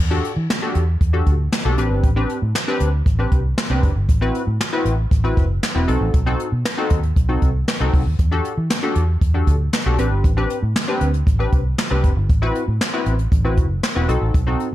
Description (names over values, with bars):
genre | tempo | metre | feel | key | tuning
early-eighties boogie funk | 117 BPM | 4/4 | straight | A dorian | A4 = 435 Hz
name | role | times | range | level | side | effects
vintage muted fingered electric bass | bass | 0.0-14.5 s | E1 to E3 | -19 LUFS | equal | none
funky polysynth comp | accompaniment | 0.1-14.7 s | C4 to B4 | -23 LUFS | left 2 dB | chorus
jazz brush drum kit | drums | 0.2-14.7 s | handclaps, hi-hat, kick drum, snare drum | -20 LUFS | equal | gated reverb
room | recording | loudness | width
studio reverb | none | -16 LUFS | side -14 dB against mid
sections
0.0-14.7 A section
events
none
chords
0.0 Em11; 1.8 Am11; 4.1 Am69; 5.9 B7b9; 8.2 Em11; 10.0 Am11; 12.3 Am69; 14.1 B7b9